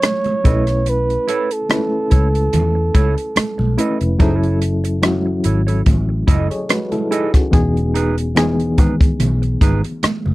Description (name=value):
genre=lush 1970s-style soul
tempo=72 BPM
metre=4/4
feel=swing 54% on 16ths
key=F# dorian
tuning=A4 = 436 Hz
part: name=breathy flugelhorn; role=melody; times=0.0-3.8 s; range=A4 to C#5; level=-20 LUFS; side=right 2 dB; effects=none
part: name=reed electric piano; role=accompaniment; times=0.0-10.3 s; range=E3 to D#5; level=-21 LUFS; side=left 1 dB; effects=fast tremolo
part: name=mellow electric guitar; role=riff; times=0.0-10.3 s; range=D#4 to D#5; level=-23 LUFS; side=right 6 dB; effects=none
part: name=compact cocktail drum kit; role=drums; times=0.0-10.2 s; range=hi-hat, kick drum, rim click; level=-15 LUFS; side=equal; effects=none
part: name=congas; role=percussion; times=0.0-10.3 s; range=none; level=-25 LUFS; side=right 3 dB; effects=none
part: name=vintage muted fingered electric bass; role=bass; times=0.5-10.3 s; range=E1 to E2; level=-18 LUFS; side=equal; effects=none
room=little or no reverb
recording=dry, close 1970s-style studio recording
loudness=-14 LUFS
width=side -18 dB against mid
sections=0.0-10.3 A section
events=none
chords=0.5 B9sus4; 4.2 F#m7; 7.5 Emaj7